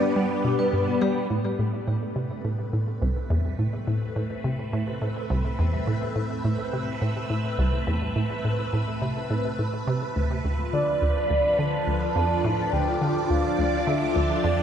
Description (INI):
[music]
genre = ambient, sequencer-driven space music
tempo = 105 BPM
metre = 4/4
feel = straight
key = unclear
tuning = A4 = 439 Hz
[part]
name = phased string machine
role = sustained chords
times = 0.0-14.6 s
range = F3 to E5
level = -28 LUFS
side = equal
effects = ensemble chorus, phaser
[part]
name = vibraphone with soft mallets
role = arpeggios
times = 0.0-1.1 s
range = B3 to B4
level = -31 LUFS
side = left 2 dB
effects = auto-pan, tape echo
[part]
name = resonant blip pluck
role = riff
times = 0.0-14.6 s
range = C2 to G3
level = -26 LUFS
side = equal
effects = chorus, tape echo
[part]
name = soft octave-layered synth lead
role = melody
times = 10.7-14.6 s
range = D5 to A5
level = -26 LUFS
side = right 1 dB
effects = chorus, phaser, tape echo
[sound]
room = wet cathedral reverb, RT60 6.8 s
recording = in a vast, echoing space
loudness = -23 LUFS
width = side -8 dB against mid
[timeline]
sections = 0.0-1.3 A section; 1.3-14.6 B section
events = fade-in on string machine 1.3-14.6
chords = 0.0 G; 1.3 Amadd9; 10.4 Dmadd9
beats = 0.16 0.73 | 1.30 1.87 2.45 3.02 | 3.59 4.16 4.73 5.30 | 5.87 6.45 7.02 7.59 | 8.16 8.73 9.30 9.87 | 10.45 11.02 11.59 12.16 | 12.73 13.30 13.87 14.45